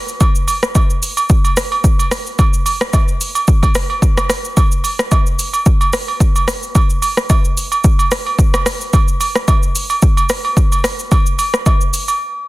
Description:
amapiano; 110 BPM; 4/4; swing 55% on 16ths
deep house drum kit; drums; 0.1-12.2 s; hi-hat, kick drum, rim click, shaker; -13 LUFS; equal; overdrive
agogo bells and woodblock; percussion; 0.2-12.2 s; -20 LUFS; right 3 dB
digital ambience; dense, heavily limited modern master; -12 LUFS; side -18 dB against mid
0.0-12.5 A section
break 12.2
| 0.21 0.75 1.30 1.84 | 2.39 2.93 3.48 4.03 | 4.57 5.12 5.66 6.21 | 6.75 7.30 7.84 8.39 | 8.93 9.48 10.03 10.57 | 11.12 11.66

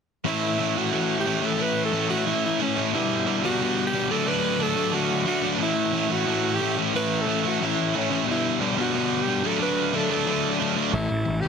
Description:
punk; 180 BPM; 4/4; straight; A mixolydian; A4 = 437 Hz
crunchy overdriven guitar; riff; 0.2-11.5 s; A2 to E4; -26 LUFS; left 9 dB
distorted electric guitar; riff; 0.2-10.9 s; G2 to D4; -26 LUFS; right 15 dB; distortion
clear alto saxophone; melody; 0.3-11.5 s; C#4 to B4; -27 LUFS; right 1 dB; ping-pong delay
fuzz picked electric bass; bass; 10.9-11.5 s; A1 to C#2; -26 LUFS; right 1 dB; overdrive
light reverb; dense, heavily limited modern master; -22 LUFS; side -6 dB against mid
0.2-10.9 A section
0.2 A; 2.9 G; 4.1 D; 5.6 A; 8.3 G; 9.4 D; 10.9 A5
| 0.25 0.58 0.92 1.25 | 1.58 1.92 2.25 2.59 | 2.92 3.26 3.59 3.93 | 4.26 4.59 4.93 5.26 | 5.60 5.93 6.26 6.60 | 6.93 7.27 7.60 7.93 | 8.27 8.60 8.94 9.27 | 9.60 9.94 10.27 10.61 | 10.94 11.27

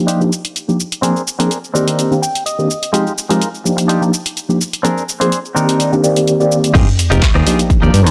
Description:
filtered disco house; 126 BPM; 4/4; swing 53% on 16ths; F dorian; A4 = 439 Hz
mellow tine electric piano; accompaniment; 0.0-7.9 s; Eb3 to D5; -18 LUFS; equal; phaser, sidechain pumping, low-pass filter
direct-recorded clean electric guitar; riff; 0.1-8.0 s; Ab3 to G5; -22 LUFS; equal; vintage 12-bit sampler grit, sidechain pumping, low-pass filter
punchy analog drum machine; drums; 0.1-8.1 s; cabasa, crash cymbal, handclaps, hi-hat, rim click; -23 LUFS; equal; sidechain pumping on perc, sidechain pumping on hats, sidechain pumping on cymbals
fingered electric bass; bass; 6.7-8.1 s; F1 to G2; -14 LUFS; equal; sidechain pumping, low-pass filter
electronic kick drum; drums; 6.7-7.8 s; -15 LUFS; equal
sub drop; sound effects; 6.7-8.1 s; -21 LUFS; equal
light reverb; dry, gritty hardware recording, cassette tape; -15 LUFS; mono
0.0-6.7 A section; 6.7-8.1 B section
filter sweep 0.0-6.7; clean electric guitar fill 2.0-2.9; drop 6.7-8.1; impact 6.7-8.1
0.1 Ebmaj9; 1.0 Bb9; 1.7 Cm9; 2.9 Fm9; 3.9 Ebmaj9; 4.8 Bb9; 5.6 Cm9; 6.7 Fm9
0.08 0.56 | 1.03 1.51 1.99 2.46 | 2.94 3.41 3.89 4.37 | 4.84 5.32 5.79 6.27 | 6.75 7.22 7.70

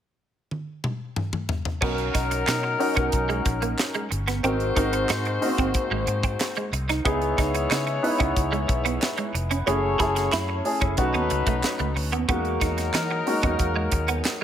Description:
polished 1980s jazz-funk pop; 92 BPM; 4/4; straight; B major; A4 = 440 Hz
tight funk drum kit; drums; 0.5-14.4 s; crash cymbal, hi-hat, kick drum, snare drum, toms; -28 LUFS; equal
warm horn section; second line; 1.8-14.4 s; F#3 to C#5; -30 LUFS; left 4 dB
dark concert grand piano; accompaniment; 1.8-14.4 s; G#3 to B4; -27 LUFS; equal; analog chorus
electric guitar at the edge of break-up; riff; 1.8-14.4 s; G#3 to E4; -29 LUFS; right 5 dB; ensemble chorus
vintage muted fingered electric bass; bass; 1.8-14.2 s; E#1 to E3; -29 LUFS; equal
group handclap; percussion; 2.5-14.4 s; -36 LUFS; right 2 dB
light reverb, studio reverb; -22 LUFS; side -10 dB against mid
0.0-1.8 A section; 1.8-14.4 B section
drum fill 0.5-1.8
0.0 N.C.; 1.8 Bmaj9; 4.4 G#7; 7.1 C#m7; 9.7 F#m7; 11.0 B7; 12.3 Emaj9#11
0.51 1.17 | 1.82 2.47 3.13 3.78 | 4.43 5.09 5.74 6.40 | 7.05 7.71 8.36 9.02 | 9.67 10.32 10.98 11.63 | 12.29 12.94 13.60 14.25

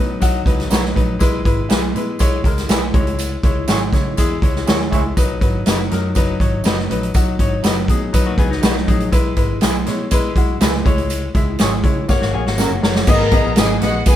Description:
uptempo 1960s-style soul; 121 BPM; 4/4; straight; B major; A4 = 438 Hz
clear grand piano; accompaniment; 0.0-14.2 s; F#3 to A#5; -22 LUFS; left 4 dB
vintage muted fingered electric bass; bass; 0.0-14.2 s; F#1 to C#3; -23 LUFS; equal
swinging big-band drum kit; drums; 0.2-14.2 s; crash cymbal, hi-hat, kick drum, snare drum; -16 LUFS; right 1 dB
tambourine; percussion; 0.2-14.2 s; -33 LUFS; right 5 dB
electric guitar through a small old amp; stabs; 0.7-13.7 s; C#4 to C#5; -25 LUFS; right 2 dB
clean electric guitar; riff; 8.3-9.1, 12.2-13.1 s; F#3 to G#4; -26 LUFS; left 4 dB
warm studio violin section; second line; 13.1-14.2 s; F#4 to A#5; -21 LUFS; left 1 dB
light reverb; band playing live in one room; -14 LUFS; side -12 dB against mid
0.0-13.1 A section; 13.1-14.2 B section
drum fill 12.1-13.1; grand piano fill 12.3-13.1
0.0 B; 1.2 E; 2.9 C#m; 5.2 B; 9.1 E; 10.9 C#m; 12.1 F#; 13.1 G#m
0.22 0.71 | 1.21 1.71 2.20 2.69 | 3.19 3.69 4.18 4.67 | 5.17 5.66 6.16 6.65 | 7.15 7.64 8.14 8.63 | 9.13 9.62 10.12 10.61 | 11.11 11.60 12.09 12.59 | 13.08 13.57 14.06

